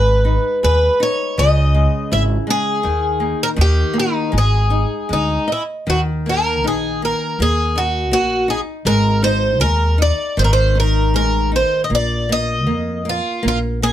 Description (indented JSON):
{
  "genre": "fado-style ballad",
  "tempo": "76-83 BPM",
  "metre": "2/4",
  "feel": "rubato",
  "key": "G# harmonic minor, Eb harmonic minor from 5.9 s",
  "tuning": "A4 = 440 Hz",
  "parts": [
    { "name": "picked twelve-string acoustic guitar", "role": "melody", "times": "0.0-13.9 s", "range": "D#4 to E5", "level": "-18 LUFS", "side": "equal", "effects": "none" },
    { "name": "flamenco guitar", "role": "accompaniment", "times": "0.0-13.9 s", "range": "C#3 to D#5", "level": "-23 LUFS", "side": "left 1 dB", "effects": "none" },
    { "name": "upright bass", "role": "bass", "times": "0.0-13.9 s", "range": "G#1 to F2", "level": "-18 LUFS", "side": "equal", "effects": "none" }
  ],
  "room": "little or no reverb",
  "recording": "close, detailed microphones",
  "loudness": "-15 LUFS",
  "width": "side -11 dB against mid",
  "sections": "0.0-5.9 A section; 5.9-13.9 B section",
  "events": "none",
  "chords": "0.0 G#m; 1.4 C#madd9; 2.8 D#sus4; 4.3 G#5; 5.9 Eb5; 8.9 Ab5; 11.9 Bbsus4"
}